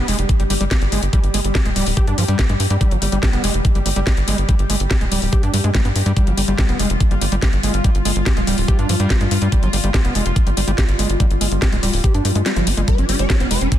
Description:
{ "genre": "psychedelic trance", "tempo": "143 BPM", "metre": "4/4", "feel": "straight", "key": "unclear", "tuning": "A4 = 439 Hz", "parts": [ { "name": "pulsing gated texture", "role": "sustained chords", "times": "0.0-13.8 s", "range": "G3 to G4", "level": "-25 LUFS", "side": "left 1 dB", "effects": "chorus, built-in reverb, sidechain pumping" }, { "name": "overdriven acid bass", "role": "riff", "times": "0.0-13.6 s", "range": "F3 to G4", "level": "-24 LUFS", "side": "right 1 dB", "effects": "distortion, auto-pan, sidechain pumping, tape echo" }, { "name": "tight sequencer bass", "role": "bass", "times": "0.0-13.7 s", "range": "D1 to G2", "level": "-20 LUFS", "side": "equal", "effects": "none" }, { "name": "drum and bass drum kit", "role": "drums", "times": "0.1-13.8 s", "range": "hi-hat, snare drum", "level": "-23 LUFS", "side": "left 2 dB", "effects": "none" }, { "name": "electronic kick drum", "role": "drums", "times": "0.3-13.8 s", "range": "none", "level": "-17 LUFS", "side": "equal", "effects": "none" }, { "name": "swell", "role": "sound effects", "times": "12.2-12.9 s", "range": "none", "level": "-37 LUFS", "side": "left 1 dB", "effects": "none" }, { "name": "swarming rave lead", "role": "melody", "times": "12.9-13.8 s", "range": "D4 to D5", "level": "-23 LUFS", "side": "equal", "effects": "chorus, phaser, sidechain pumping, digital delay" } ], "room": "little or no reverb", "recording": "dense, heavily limited modern master", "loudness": "-15 LUFS", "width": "side -12 dB against mid", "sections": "0.0-13.8 A section", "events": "kick drops out 12.5-12.9", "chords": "0.0 G5" }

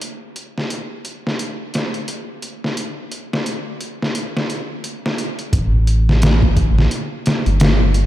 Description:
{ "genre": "trip hop", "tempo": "87 BPM", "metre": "4/4", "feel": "swing 59% on 16ths", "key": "unclear", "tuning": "A4 = 440 Hz", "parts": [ { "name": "trip hop sampler-style drum kit", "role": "drums", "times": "0.0-8.1 s", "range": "hi-hat, kick drum, snare drum", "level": "-20 LUFS", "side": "equal", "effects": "overdrive, high-pass filter on hats, high-pass filter on snare, high-pass filter on kick, high-pass filter on room" }, { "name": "round analog bass", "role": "bass", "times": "5.5-8.1 s", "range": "G1 to A1", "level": "-14 LUFS", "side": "equal", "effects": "none" } ], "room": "moderate lush hall reverb, RT60 2.9 s", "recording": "dreamy mix soaked in reverb", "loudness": "-17 LUFS", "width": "side -14 dB against mid", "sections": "0.0-5.5 A section; 5.5-8.1 B section", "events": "none", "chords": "none" }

